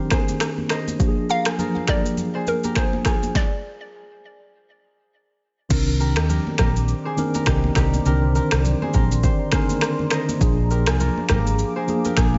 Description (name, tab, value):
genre	afrobeats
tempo	102 BPM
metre	4/4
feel	swing 58% on 16ths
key	C minor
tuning	A4 = 440 Hz
part	mellow tine electric piano	accompaniment	0.0-12.4 s	D3 to Bb4	-27 LUFS	equal	none
part	kora	riff	0.0-12.4 s	Eb4 to Eb5	-33 LUFS	equal	delay
part	deep house drum kit	drums	0.1-12.3 s	crash cymbal, finger snaps, kick drum, rim click, shaker, snare drum	-24 LUFS	equal	overdrive
part	congas	percussion	0.1-12.4 s	none	-33 LUFS	equal	none
part	hollow square pluck	melody	1.3-5.1 s	Bb4 to F5	-29 LUFS	equal	chorus, delay
part	deep dark ambient pad	sustained chords	6.4-12.4 s	Ab4 to D6	-36 LUFS	equal	chorus, built-in reverb
part	hollow-body short-scale fingered electric bass	bass	5.7-12.4 s	Ab1 to Eb2	-23 LUFS	equal	none
room	little or no reverb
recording	nothing above 7.7 kHz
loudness	-21 LUFS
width	mono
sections	0.0-5.7 A section; 5.7-12.4 B section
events	stop 3.4-5.7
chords	0.0 Cm9; 1.0 Bb7; 5.7 Cm9; 10.4 Bb7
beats	0.41 | 1.00 1.59 2.17 2.76 | 3.35 3.94 4.53 5.12 | 5.70 6.29 6.88 7.47 | 8.06 8.64 9.23 9.82 | 10.41 11.00 11.59 12.18